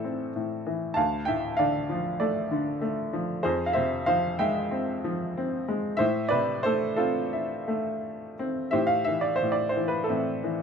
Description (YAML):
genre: classical, lyrical solo piano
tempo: 82-98 BPM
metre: 4/4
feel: rubato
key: A minor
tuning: A4 = 440 Hz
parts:
  - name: bright upright piano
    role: solo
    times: 0.0-10.6 s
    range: D2 to A5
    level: -25 LUFS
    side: equal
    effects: none
room: moderate studio ambience, RT60 0.5 s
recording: dark, warm production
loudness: -25 LUFS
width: side -6 dB against mid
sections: 0.0-8.7 A section; 8.7-10.6 B section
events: none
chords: 0.0 Am; 1.0 Dm; 3.4 Fmadd9; 6.0 Am; 8.7 Am7